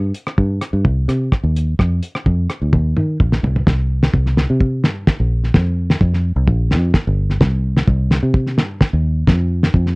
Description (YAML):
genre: highlife guitar band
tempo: 128 BPM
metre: 4/4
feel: straight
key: C minor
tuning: A4 = 441 Hz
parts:
  - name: fingered electric bass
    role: bass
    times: 0.0-10.0 s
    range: G1 to Eb3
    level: -16 LUFS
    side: equal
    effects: transformer saturation
  - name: cloth-damped thuddy drum kit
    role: drums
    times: 0.1-9.9 s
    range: hi-hat, kick drum, rim click, snare drum, toms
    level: -15 LUFS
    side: equal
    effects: none
room: little or no reverb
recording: dry, close 1970s-style studio recording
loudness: -14 LUFS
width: side -32 dB against mid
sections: 0.0-3.7 A section; 3.7-10.0 B section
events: drum fill 2.7-3.7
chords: none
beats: 0.38 0.85 1.32 | 1.79 2.26 2.73 3.19 | 3.66 4.13 4.60 5.07 | 5.53 6.00 6.47 6.94 | 7.40 7.87 8.34 8.81 | 9.28 9.74